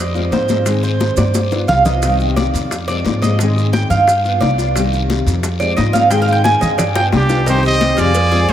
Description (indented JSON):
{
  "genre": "latin, Cuban son and guajira",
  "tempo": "176 BPM",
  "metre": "4/4",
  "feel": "straight",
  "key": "C harmonic minor",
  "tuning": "A4 = 442 Hz",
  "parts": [
    { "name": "Cuban tres", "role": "arpeggios", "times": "0.0-8.5 s", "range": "Eb4 to Ab5", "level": "-18 LUFS", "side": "right 3 dB", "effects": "analog delay" },
    { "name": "upright bass", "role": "bass", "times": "0.0-8.5 s", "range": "C2 to Ab2", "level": "-18 LUFS", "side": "equal", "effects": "none" },
    { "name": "nylon-string guitar", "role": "accompaniment", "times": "0.1-8.5 s", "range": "C3 to Ab4", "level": "-21 LUFS", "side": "left 4 dB", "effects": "ensemble chorus" },
    { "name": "congas", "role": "percussion", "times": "0.2-8.5 s", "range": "none", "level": "-23 LUFS", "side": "left 3 dB", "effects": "none" },
    { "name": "maracas", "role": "percussion", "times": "0.2-8.5 s", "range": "none", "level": "-31 LUFS", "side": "right 9 dB", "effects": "none" },
    { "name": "bongos and cowbell", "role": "percussion", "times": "0.3-8.5 s", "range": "none", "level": "-26 LUFS", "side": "left 5 dB", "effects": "none" },
    { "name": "guiro", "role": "percussion", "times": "0.3-8.5 s", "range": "none", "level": "-31 LUFS", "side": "left 6 dB", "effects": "none" },
    { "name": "breathy bright jazz flute", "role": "second line", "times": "7.1-8.5 s", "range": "D4 to C5", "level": "-23 LUFS", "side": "right 4 dB", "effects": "analog delay" },
    { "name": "bright trumpet", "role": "melody", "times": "7.2-8.5 s", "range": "G4 to Eb5", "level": "-16 LUFS", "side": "right 1 dB", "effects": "analog delay" }
  ],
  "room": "wet plate reverb, RT60 3.5 s",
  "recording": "dreamy mix soaked in reverb",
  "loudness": "-12 LUFS",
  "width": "side -10 dB against mid",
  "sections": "0.0-7.5 A section; 7.5-8.5 B section",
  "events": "Cuban tres solo 0.0-7.5; drum fill 1.2-2.0, 7.0-7.5",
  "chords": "0.0 Fm; 0.7 Ab; 1.3 G7; 2.0 Cm; 2.7 Fm; 3.4 Ab; 4.1 G7; 4.8 Cm; 5.4 Fm; 6.1 Ab; 6.8 G7; 7.5 Cm",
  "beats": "0.32 | 0.66 1.00 1.34 1.69 | 2.03 2.37 2.71 3.05 | 3.39 3.73 4.07 4.41 | 4.75 5.09 5.43 5.77 | 6.11 6.45 6.79 7.13 | 7.47 7.81 8.15 8.48"
}